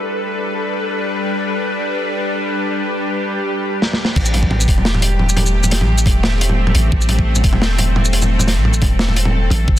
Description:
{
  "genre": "half-time drum and bass",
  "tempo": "174 BPM",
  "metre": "4/4",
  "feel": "swing 54% on 16ths, half-time",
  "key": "A minor",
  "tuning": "A4 = 440 Hz",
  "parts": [
    { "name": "bowed-like drone", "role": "sustained chords", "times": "0.0-9.8 s", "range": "G3 to B4", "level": "-20 LUFS", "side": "left 1 dB", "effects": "built-in reverb, sidechain pumping" },
    { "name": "pulsing gated texture", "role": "texture", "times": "0.0-2.8 s", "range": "A4", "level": "-30 LUFS", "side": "right 3 dB", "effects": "none" },
    { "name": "crunchy breakbeat drum kit", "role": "drums", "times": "3.8-9.6 s", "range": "crash cymbal, hi-hat, shaker, snare drum, toms", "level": "-18 LUFS", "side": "equal", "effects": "low-pass filter on cymbals, low-pass filter on hats, low-pass filter on toms, low-pass filter on snare, low-pass filter on perc, low-pass filter on room" },
    { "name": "long sustained 808-style bass", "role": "bass", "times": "4.2-9.8 s", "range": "E1 to A1", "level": "-16 LUFS", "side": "equal", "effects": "none" },
    { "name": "electronic kick drum", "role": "drums", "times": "4.2-9.8 s", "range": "none", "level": "-17 LUFS", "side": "equal", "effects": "overdrive" }
  ],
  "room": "light reverb",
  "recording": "dense, heavily limited modern master",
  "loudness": "-14 LUFS",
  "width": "side -13 dB against mid",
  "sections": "0.0-4.2 A section; 4.2-9.8 B section",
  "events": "drum fill 3.8-4.2; drop 4.2-9.8",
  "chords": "0.0 G; 4.2 Am7"
}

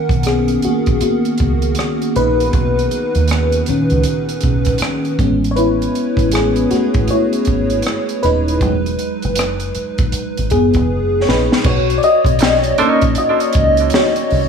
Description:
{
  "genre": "R&B, neo-soul",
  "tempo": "79 BPM",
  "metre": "4/4",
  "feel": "swing 62% on 16ths",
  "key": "B major",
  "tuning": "A4 = 440 Hz",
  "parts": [
    { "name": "FM electric piano with soft pad layer", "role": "accompaniment", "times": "0.0-14.5 s", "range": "A#2 to F#5", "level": "-15 LUFS", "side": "left 1 dB", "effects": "chorus" },
    { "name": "deep dub fingered electric bass", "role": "bass", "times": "0.1-14.5 s", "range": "D#1 to D#2", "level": "-18 LUFS", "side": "right 1 dB", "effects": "none" },
    { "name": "compact cocktail drum kit", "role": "drums", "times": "0.1-14.5 s", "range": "crash cymbal, hi-hat, kick drum, rim click, snare drum", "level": "-19 LUFS", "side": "right 1 dB", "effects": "none" },
    { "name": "clean electric guitar", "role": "second line", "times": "12.4-13.0 s", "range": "D#4 to C#5", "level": "-20 LUFS", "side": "right 5 dB", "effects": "tape echo" }
  ],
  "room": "light reverb, studio reverb",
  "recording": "studio ambience",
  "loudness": "-13 LUFS",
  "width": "side -6 dB against mid",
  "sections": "0.0-11.6 A section; 11.6-14.5 B section",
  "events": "FM electric piano solo 0.0-11.6, 11.6-14.5; drum fill 10.9-11.6",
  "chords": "0.0 Bmaj9; 5.2 Amaj9; 8.6 Emaj9; 11.6 Bmaj9"
}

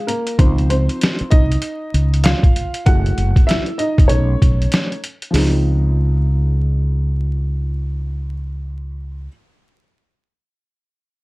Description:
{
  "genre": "hip hop, jazz-hop",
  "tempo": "97 BPM",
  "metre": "4/4",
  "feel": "swing 62% on 16ths",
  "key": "Db major",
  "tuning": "A4 = 441 Hz",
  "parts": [
    { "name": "dark upright piano", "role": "accompaniment", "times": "0.0-9.3 s", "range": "F3 to Gb5", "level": "-23 LUFS", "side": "equal", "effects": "plate reverb" },
    { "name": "trip hop sampler-style drum kit", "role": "drums", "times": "0.1-5.5 s", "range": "hi-hat, kick drum, snare drum", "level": "-15 LUFS", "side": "equal", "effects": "none" },
    { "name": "mellow fretless electric bass", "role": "bass", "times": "0.4-9.3 s", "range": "Fb1 to Db2", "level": "-17 LUFS", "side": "equal", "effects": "none" }
  ],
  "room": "little or no reverb",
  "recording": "vinyl crackle",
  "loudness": "-14 LUFS",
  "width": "side -22 dB against mid",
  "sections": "0.4-5.3 A section; 5.3-7.8 B section",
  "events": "upright piano solo 0.4-5.3",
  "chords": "0.4 Dbmaj9; 2.9 Gbm7; 4.1 Cb9; 5.3 Dbmaj9"
}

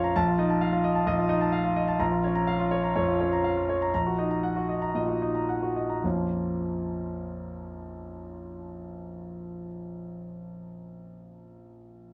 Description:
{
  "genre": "classical, virtuoso piano study",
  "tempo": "106-131 BPM",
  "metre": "4/4",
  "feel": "rubato",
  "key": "Bb minor",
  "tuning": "A4 = 440 Hz",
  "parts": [
    { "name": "clear concert grand piano", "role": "solo", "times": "0.0-12.1 s", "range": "Bb1 to Bb5", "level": "-29 LUFS", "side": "equal", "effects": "none" }
  ],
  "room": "light reverb",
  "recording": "close, detailed microphones",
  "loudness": "-27 LUFS",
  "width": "mono",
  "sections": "0.0-6.0 A section; 6.0-10.3 B section",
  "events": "slowing down 1.1-6.0",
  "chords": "0.1 F7/Bb; 2.0 Bbm; 3.9 Ebm/Bb; 6.0 Bbm"
}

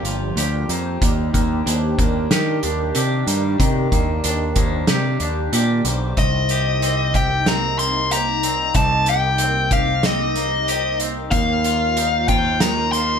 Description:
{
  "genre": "post-rock",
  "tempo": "93 BPM",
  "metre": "4/4",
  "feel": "straight",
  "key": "unclear",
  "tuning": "A4 = 441 Hz",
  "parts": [
    { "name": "phased analog pad", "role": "sustained chords", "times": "0.0-13.2 s", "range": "C3 to G4", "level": "-29 LUFS", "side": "left 1 dB", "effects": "phaser, chorus" },
    { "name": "twangy electric guitar", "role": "arpeggios", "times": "0.0-13.2 s", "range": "C3 to G4", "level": "-28 LUFS", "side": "left 1 dB", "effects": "none" },
    { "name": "vibraphone with soft mallets", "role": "arpeggios", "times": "0.0-13.2 s", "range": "Bb4 to D6", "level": "-30 LUFS", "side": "right 6 dB", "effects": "none" },
    { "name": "growling picked electric bass", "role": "bass", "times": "0.0-13.2 s", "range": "G1 to Eb3", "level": "-22 LUFS", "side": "equal", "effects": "overdrive" },
    { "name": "loose indie drum kit", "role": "drums", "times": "0.0-13.1 s", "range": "hi-hat, kick drum, snare drum", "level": "-22 LUFS", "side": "equal", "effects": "none" },
    { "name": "bluesy overdriven lead guitar", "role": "melody", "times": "6.2-13.2 s", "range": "Eb5 to C6", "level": "-19 LUFS", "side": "left 3 dB", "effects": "distortion" }
  ],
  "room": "moderate studio reverb, RT60 0.7 s",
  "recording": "band playing live in one room",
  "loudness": "-17 LUFS",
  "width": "side -7 dB against mid",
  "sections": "0.0-6.2 A section; 6.2-13.2 B section",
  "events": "none",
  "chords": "0.0 Gm7; 1.0 Ebmaj7; 6.2 Cm7; 11.3 Ebsus2"
}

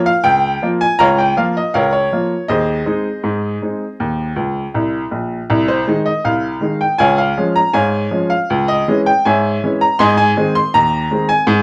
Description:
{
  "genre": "ragtime piano",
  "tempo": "80 BPM",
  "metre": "2/4",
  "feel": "straight",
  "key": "Ab major",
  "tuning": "A4 = 439 Hz",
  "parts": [
    { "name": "bright upright piano", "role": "solo", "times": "0.0-11.6 s", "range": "Bb1 to C6", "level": "-16 LUFS", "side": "equal", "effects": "none" }
  ],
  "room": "moderate studio reverb, RT60 0.5 s",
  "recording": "worn, warbling old tape, cassette tape, warbly pitch drift",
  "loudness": "-16 LUFS",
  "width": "mono",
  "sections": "0.0-11.6 A section",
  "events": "upright piano fill 4.4-5.5",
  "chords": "0.0 Bbm/Db; 2.5 Ab/Eb; 4.0 Eb5; 5.5 Ab/C; 7.0 Db; 8.5 Dbm; 10.0 Ab"
}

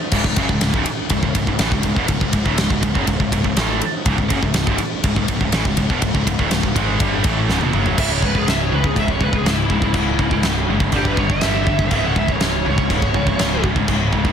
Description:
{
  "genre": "heavy metal",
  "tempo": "122 BPM",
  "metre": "4/4",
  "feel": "straight",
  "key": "C# phrygian",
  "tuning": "A4 = 440 Hz",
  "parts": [
    { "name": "distorted electric guitar", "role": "riff", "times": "0.1-14.3 s", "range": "C#2 to A3", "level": "-24 LUFS", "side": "left 8 dB", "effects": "distortion" },
    { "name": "distorted electric guitar", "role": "riff", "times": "0.1-14.3 s", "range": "C#2 to A3", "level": "-26 LUFS", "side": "right 1 dB", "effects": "distortion" },
    { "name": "scooped high-gain guitar", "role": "riff", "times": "0.1-14.3 s", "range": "C#2 to A3", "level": "-24 LUFS", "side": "right 11 dB", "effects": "distortion" },
    { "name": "growling picked electric bass", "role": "bass", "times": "0.1-14.3 s", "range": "C#1 to C#2", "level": "-24 LUFS", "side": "equal", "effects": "overdrive" },
    { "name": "big rock drum kit", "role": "drums", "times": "0.1-14.3 s", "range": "china cymbal, crash cymbal, kick drum, ride cymbal, snare drum, toms", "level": "-20 LUFS", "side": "equal", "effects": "none" },
    { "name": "high-gain lead guitar", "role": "melody", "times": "8.0-13.6 s", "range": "E4 to F#5", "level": "-23 LUFS", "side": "equal", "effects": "distortion, tape echo" }
  ],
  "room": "little or no reverb",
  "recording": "dense, heavily limited modern master",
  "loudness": "-16 LUFS",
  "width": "side -8 dB against mid",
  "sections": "0.0-8.0 A section; 8.0-14.3 B section",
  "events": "drum fill 7.5-8.0; lead electric guitar solo 8.0-14.3",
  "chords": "0.0 C#m; 10.9 G5; 11.9 C#5"
}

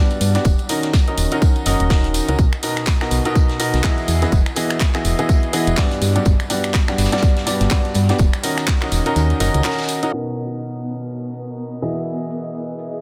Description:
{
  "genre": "piano house",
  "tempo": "124 BPM",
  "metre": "4/4",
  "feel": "swing 58% on 16ths",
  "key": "B major",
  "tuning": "A4 = 439 Hz",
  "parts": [
    { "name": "clear concert grand piano", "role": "riff", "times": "0.0-13.0 s", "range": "G2 to D#5", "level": "-24 LUFS", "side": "equal", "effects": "sidechain pumping, analog delay" },
    { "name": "house drum kit", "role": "drums", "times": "0.1-13.0 s", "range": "finger snaps, handclaps, hi-hat", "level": "-28 LUFS", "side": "equal", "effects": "low-pass filter on hats, low-pass filter on snare, low-pass filter on room" },
    { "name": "vintage brush drum kit", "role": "drums", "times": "0.1-10.0 s", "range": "hi-hat, snare drum, tambourine", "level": "-35 LUFS", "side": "equal", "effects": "sidechain pumping on hats, high-pass filter on hats, high-pass filter on snare, sidechain pumping on perc, high-pass filter on perc, high-pass filter on room" },
    { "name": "tambourine", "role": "percussion", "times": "0.1-13.0 s", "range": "none", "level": "-35 LUFS", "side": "equal", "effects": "none" },
    { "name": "solid FM bass", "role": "bass", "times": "0.2-9.6 s", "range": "D#1 to G2", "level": "-21 LUFS", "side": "equal", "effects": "sidechain pumping" },
    { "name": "electronic kick drum", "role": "drums", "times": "0.5-8.8 s", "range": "none", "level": "-18 LUFS", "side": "equal", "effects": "none" },
    { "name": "granular cloud pad", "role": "texture", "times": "10.8-13.0 s", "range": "B3 to F#5", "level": "-32 LUFS", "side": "equal", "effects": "built-in reverb, ensemble chorus, sidechain pumping" }
  ],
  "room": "light reverb, studio ambience",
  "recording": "low-pass filter",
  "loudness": "-18 LUFS",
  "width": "mono",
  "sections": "0.0-10.1 A section; 10.1-13.0 B section",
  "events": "kick drops out 9.2-10.1; filter sweep 10.1-13.0",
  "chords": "0.5 D#m7; 2.4 Bmaj7; 4.1 Emaj9; 6.0 Gmaj7; 8.2 D#m7; 10.1 Bmaj7; 11.8 Emaj9"
}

